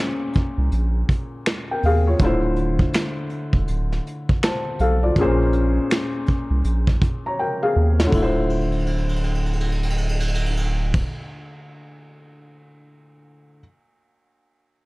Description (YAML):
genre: lo-fi hip hop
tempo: 81 BPM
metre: 4/4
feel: swing 60% on 16ths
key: unclear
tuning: A4 = 440 Hz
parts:
  - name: felt-muted upright piano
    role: accompaniment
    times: 0.0-13.6 s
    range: Bb2 to Bb5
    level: -24 LUFS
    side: left 1 dB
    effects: cassette tape, low-pass filter
  - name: vintage brush drum kit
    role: drums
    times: 0.3-12.5 s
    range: crash cymbal, finger snaps, hi-hat, kick drum, ride cymbal, snare drum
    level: -22 LUFS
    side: equal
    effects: none
  - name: soft dub sub bass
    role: bass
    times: 0.6-11.0 s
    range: D1 to Eb2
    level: -21 LUFS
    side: equal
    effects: none
room: light reverb, small room reverb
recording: none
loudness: -19 LUFS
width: side -22 dB against mid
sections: 0.0-8.1 A section; 8.1-11.1 B section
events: drum fill 7.4-8.1, 8.5-10.9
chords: 0.0 Bbm9; 2.2 Dm9; 5.2 Bbm9; 8.1 Dm9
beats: 0.72 1.46 | 2.20 2.94 3.68 4.42 | 5.16 5.90 6.64 7.38 | 8.12 8.87 9.61 10.35